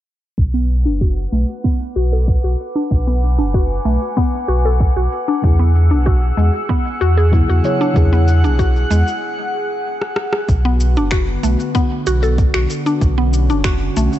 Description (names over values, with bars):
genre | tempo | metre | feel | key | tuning
organic downtempo | 95 BPM | 4/4 | straight | B dorian | A4 = 440 Hz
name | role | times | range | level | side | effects
airy breathy pad | sustained chords | 0.4-14.2 s | D3 to F#6 | -24 LUFS | equal | chorus, sidechain pumping
warm sub bass | bass | 0.4-14.1 s | F#1 to E2 | -15 LUFS | equal | tube saturation
electronic kick drum | drums | 0.4-13.8 s | none | -17 LUFS | equal | overdrive, small room ambience
electronic shaker, rim click and finger snaps | drums | 0.4-14.2 s | none | -24 LUFS | left 1 dB | overdrive, small room ambience
drifting glass-harmonics texture | texture | 2.1-9.2 s | F#5 | -31 LUFS | left 5 dB | chorus, built-in reverb
mallet-like synth pluck | arpeggios | 0.5-14.1 s | G#3 to A4 | -21 LUFS | left 1 dB | chorus, tape echo
deep mellow chord stab | accompaniment | 5.4-10.5 s | C#3 to C#5 | -22 LUFS | left 2 dB | chorus, sidechain pumping, tape echo
room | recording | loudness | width
light reverb | low-pass filter, nothing above 8.0 kHz | -14 LUFS | side -13 dB against mid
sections
0.4-10.5 A section; 10.5-14.2 B section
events
filter sweep on sub bass 0.4-10.5; filter sweep on synth pluck 0.4-10.5; filter sweep 0.4-10.5; break 9.2-10.5; drum fill 10.0-10.5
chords
0.4 Bm; 5.4 Eadd9; 10.5 Bm